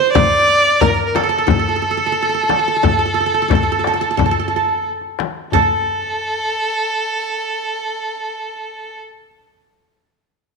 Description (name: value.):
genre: Arabic maqam ensemble.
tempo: 89 BPM.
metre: 4/4.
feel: straight.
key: A maqam kurd.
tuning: A4 = 440 Hz.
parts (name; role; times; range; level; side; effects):
warm violin; melody; 0.0-9.0 s; A4 to D5; -18 LUFS; right 1 dB; slapback echo.
qanun; second line; 0.0-9.7 s; A4 to D5; -18 LUFS; right 5 dB; slapback echo.
darbuka; percussion; 0.1-5.8 s; none; -24 LUFS; left 6 dB; none.
frame drum; percussion; 0.2-5.9 s; none; -19 LUFS; left 6 dB; none.
room: wet echo chamber reverb, RT60 1.6 s, studio ambience.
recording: 1960s-style stereo.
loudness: -15 LUFS.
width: side -4 dB against mid.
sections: 0.0-5.5 A section; 5.5-8.2 B section.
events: none.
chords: none.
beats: | 0.15 0.82 1.50 2.17 | 2.84 3.51 4.19 4.86 | 5.53 6.20 6.88 7.55.